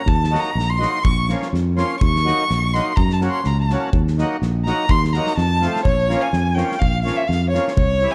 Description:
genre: balkan folk, Balkan wedding band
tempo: 125 BPM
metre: 2/4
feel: swing 55% on 16ths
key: Eb dorian sharp4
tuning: A4 = 440 Hz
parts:
  - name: rich violin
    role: melody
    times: 0.0-8.1 s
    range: Db5 to Db6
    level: -24 LUFS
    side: equal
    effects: none
  - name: accordion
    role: accompaniment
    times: 0.0-8.1 s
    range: E3 to Gb4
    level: -28 LUFS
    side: equal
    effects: none
  - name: fingered electric bass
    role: bass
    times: 0.1-8.1 s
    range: Bb1 to Gb2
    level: -22 LUFS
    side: equal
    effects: none
  - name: loose indie drum kit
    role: percussion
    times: 0.1-7.9 s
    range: kick drum, snare drum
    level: -25 LUFS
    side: equal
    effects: none
room: light reverb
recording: dark, warm production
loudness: -19 LUFS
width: mono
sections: 0.0-5.9 A section; 5.9-8.1 B section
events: violin solo 0.0-5.9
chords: 0.1 Ebm; 1.0 Bbm; 2.0 Ebm; 3.0 Gb; 3.9 Ebm; 5.4 F; 5.9 Bbm

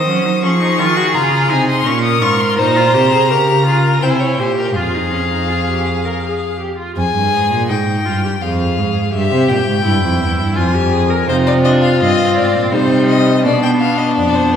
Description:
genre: classical, baroque-style fugue for string quartet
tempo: 83 BPM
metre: 3/4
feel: straight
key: F minor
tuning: A4 = 440 Hz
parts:
  - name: warm violin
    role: melody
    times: 0.0-14.6 s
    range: B4 to Eb6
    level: -19 LUFS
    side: left 5 dB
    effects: none
  - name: warm violin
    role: second line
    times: 0.0-6.6, 11.3-14.6 s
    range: D4 to Db5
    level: -18 LUFS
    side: left 1 dB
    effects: none
  - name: rich viola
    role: accompaniment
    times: 0.0-14.6 s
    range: G3 to Bb4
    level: -19 LUFS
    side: right 1 dB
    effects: none
  - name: rich cello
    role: bass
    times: 0.0-14.6 s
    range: E2 to Gb3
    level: -16 LUFS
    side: right 1 dB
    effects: none
room: wet recital hall reverb, RT60 1.6 s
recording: heard from further back in the room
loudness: -12 LUFS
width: side -8 dB against mid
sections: 0.0-7.0 A section; 7.0-14.6 B section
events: none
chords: 0.4 Db; 1.9 Bbm11; 2.6 Bbm; 4.0 C7; 4.8 Fm; 9.1 C/G (rootless); 10.6 Fm; 11.3 Cm; 13.4 G7/B (rootless)

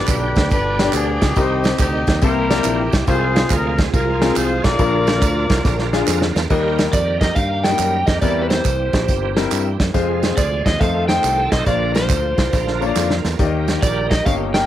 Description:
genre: uptempo gospel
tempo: 140 BPM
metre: 4/4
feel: swing 66% on 8ths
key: Eb major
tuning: A4 = 437 Hz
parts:
  - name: warm horn section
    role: melody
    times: 0.0-6.1 s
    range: B3 to D5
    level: -21 LUFS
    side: left 2 dB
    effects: cassette tape
  - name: clear concert grand piano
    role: accompaniment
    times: 0.0-14.7 s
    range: G2 to Eb5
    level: -22 LUFS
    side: left 8 dB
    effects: cassette tape
  - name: bright tonewheel organ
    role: sustained chords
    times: 0.0-14.7 s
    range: B2 to G5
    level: -25 LUFS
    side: right 10 dB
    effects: slow rotary speaker, chorus vibrato, cassette tape
  - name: fingered electric bass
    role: bass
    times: 0.0-14.6 s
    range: G1 to G2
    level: -22 LUFS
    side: equal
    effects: none
  - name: natural country drum kit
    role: drums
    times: 0.1-14.6 s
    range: crash cymbal, hi-hat, kick drum, ride cymbal, snare drum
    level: -19 LUFS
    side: right 1 dB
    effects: cassette tape
  - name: handclaps and tambourine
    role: percussion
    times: 0.1-14.6 s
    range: none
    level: -31 LUFS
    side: right 12 dB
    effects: none
  - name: overdriven slide guitar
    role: melody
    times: 6.9-14.7 s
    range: Cb5 to G5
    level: -20 LUFS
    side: equal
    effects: cassette tape
room: small room ambience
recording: home recording on cassette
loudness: -15 LUFS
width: side -12 dB against mid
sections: 0.0-6.5 A section; 6.5-14.7 B section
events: drum fill 5.6-6.5, 12.5-13.4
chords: 0.0 G; 1.4 Cm; 2.2 C7; 3.1 Fm/C; 4.8 Bb; 6.5 Eb; 8.2 C7; 9.9 Fm; 10.8 F7; 11.7 Bb; 13.4 Eb

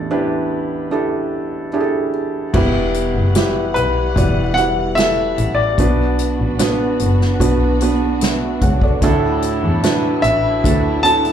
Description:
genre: pop ballad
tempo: 74 BPM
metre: 4/4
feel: straight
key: unclear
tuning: A4 = 438 Hz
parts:
  - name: clear concert grand piano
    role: melody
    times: 0.0-11.3 s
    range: B4 to A5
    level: -18 LUFS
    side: left 2 dB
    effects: slapback echo, ping-pong delay
  - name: felt-muted upright piano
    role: accompaniment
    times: 0.0-11.3 s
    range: A1 to F#5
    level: -18 LUFS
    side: right 2 dB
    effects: slapback echo
  - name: dark studio string section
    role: sustained chords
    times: 2.5-11.3 s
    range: E3 to F#5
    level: -26 LUFS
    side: left 1 dB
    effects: none
  - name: clear double bass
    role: bass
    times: 2.5-11.3 s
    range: E1 to E2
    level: -20 LUFS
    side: left 1 dB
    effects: none
  - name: unplugged drum kit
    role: drums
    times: 2.5-11.3 s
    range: crash cymbal, hi-hat, kick drum, snare drum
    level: -20 LUFS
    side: equal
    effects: none
room: moderate club reverb, RT60 0.8 s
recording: live gig heard through the venue's PA, club reverb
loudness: -14 LUFS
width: side -9 dB against mid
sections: 0.0-2.5 A section; 2.5-11.3 B section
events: none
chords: 0.0 A7sus4; 2.5 Emadd9; 5.8 Bm; 9.0 Dadd9

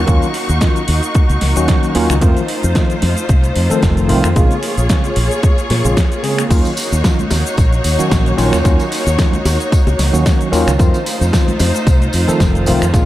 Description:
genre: nu-disco, nu disco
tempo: 112 BPM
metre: 4/4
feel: swing 55% on 16ths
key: Eb dorian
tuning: A4 = 440 Hz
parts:
  - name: rich symphonic string section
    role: sustained chords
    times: 0.0-13.1 s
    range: A3 to Db6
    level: -20 LUFS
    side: equal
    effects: sidechain pumping
  - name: fingered electric bass with an envelope filter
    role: bass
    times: 0.0-13.0 s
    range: F1 to Bb2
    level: -16 LUFS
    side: equal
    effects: none
  - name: tine electric piano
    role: accompaniment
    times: 0.1-13.1 s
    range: Db3 to A4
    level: -19 LUFS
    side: equal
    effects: medium stereo tremolo, sidechain pumping, diffuse ambient delay
  - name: electronic kick drum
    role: drums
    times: 0.1-13.1 s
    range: none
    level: -13 LUFS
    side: equal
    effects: overdrive
  - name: pop drum kit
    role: drums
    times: 0.1-13.1 s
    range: crash cymbal, finger snaps, hi-hat, shaker, snare drum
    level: -22 LUFS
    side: equal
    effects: overdrive
  - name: tambourine, congas and bongos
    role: percussion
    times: 6.5-13.1 s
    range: none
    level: -26 LUFS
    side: left 2 dB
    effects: none
room: light reverb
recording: none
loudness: -12 LUFS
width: side -14 dB against mid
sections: 0.0-13.1 A section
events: none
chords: 0.0 Ebm7; 2.2 F7; 4.4 Bbm7; 6.5 Ebm7; 10.8 F7

